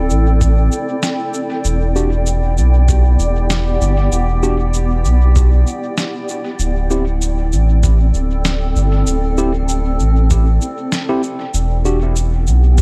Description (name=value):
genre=ambient dub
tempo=97 BPM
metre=4/4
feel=swing 53% on 16ths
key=unclear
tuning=A4 = 440 Hz
part: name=granular cloud pad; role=sustained chords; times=0.0-12.8 s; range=B3 to G5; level=-24 LUFS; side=equal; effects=built-in reverb
part: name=round analog bass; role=bass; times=0.0-12.8 s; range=D1 to B1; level=-16 LUFS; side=equal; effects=tube saturation
part: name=electronic shaker and snare drum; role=drums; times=0.1-12.8 s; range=none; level=-26 LUFS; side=equal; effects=dub echo
part: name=electronic kick drum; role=drums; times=0.4-12.8 s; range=none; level=-20 LUFS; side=equal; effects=none
part: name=tine electric piano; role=stabs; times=2.0-12.0 s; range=C4 to G4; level=-25 LUFS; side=equal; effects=dub echo
room=little or no reverb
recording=none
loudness=-16 LUFS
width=mono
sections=0.0-12.8 A section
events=none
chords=0.0 D9sus4; 1.6 Em7; 6.6 D9sus4; 11.5 Em7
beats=0.41 1.03 | 1.65 2.27 2.89 3.50 | 4.12 4.74 5.36 5.98 | 6.60 7.21 7.83 8.45 | 9.07 9.69 10.31 10.93 | 11.54 12.16 12.78